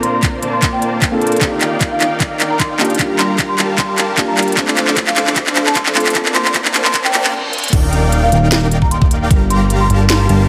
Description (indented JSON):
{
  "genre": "future bass",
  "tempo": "152 BPM",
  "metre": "4/4",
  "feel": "swing 53% on 16ths, half-time",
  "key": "unclear",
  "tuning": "A4 = 435 Hz",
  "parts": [
    { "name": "marimba with medium mallets", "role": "melody", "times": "0.0-10.3 s", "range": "F5 to C6", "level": "-24 LUFS", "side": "equal", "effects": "sidechain pumping, low-pass filter, digital delay" },
    { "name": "felt-muted upright piano", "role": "accompaniment", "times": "0.0-7.7 s", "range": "A3 to D5", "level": "-24 LUFS", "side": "equal", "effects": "sidechain pumping, digital delay" },
    { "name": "shimmering ambient pad", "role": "sustained chords", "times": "0.0-10.5 s", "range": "D3 to D5", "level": "-33 LUFS", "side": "equal", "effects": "none" },
    { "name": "dense compressed supersaw", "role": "riff", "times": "0.0-10.5 s", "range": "G3 to D6", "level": "-22 LUFS", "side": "equal", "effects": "sidechain pumping, low-pass filter" },
    { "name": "trap drum kit", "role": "drums", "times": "0.0-10.4 s", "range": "crash cymbal, handclaps, hi-hat, snare drum", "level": "-18 LUFS", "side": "equal", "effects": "none" },
    { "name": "electronic kick drum", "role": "drums", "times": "0.2-9.4 s", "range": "none", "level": "-18 LUFS", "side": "equal", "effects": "none" },
    { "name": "riser and reverse cymbal", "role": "sound effects", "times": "5.1-7.7 s", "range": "none", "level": "-31 LUFS", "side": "equal", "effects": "none" },
    { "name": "fat analog bass", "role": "bass", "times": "7.7-10.5 s", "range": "Eb1 to G1", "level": "-16 LUFS", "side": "equal", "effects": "sidechain pumping" }
  ],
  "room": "moderate lush hall reverb, RT60 2.4 s",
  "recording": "high-pass filter",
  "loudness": "-14 LUFS",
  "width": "mono",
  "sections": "0.0-7.7 A section; 7.7-10.5 B section",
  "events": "build-up 0.0-7.7; drum fill 0.0-7.3, 7.5; filter sweep on supersaw synth 0.0-7.7; filter sweep 0.0-7.7; reverse cymbal 6.9-7.7; drop 7.7-10.5",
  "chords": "0.0 Bbmaj9; 1.4 Ebmaj7; 3.0 Gm9; 4.6 Dm7; 6.2 Bbmaj9; 7.7 Ebmaj7; 9.3 Gm9"
}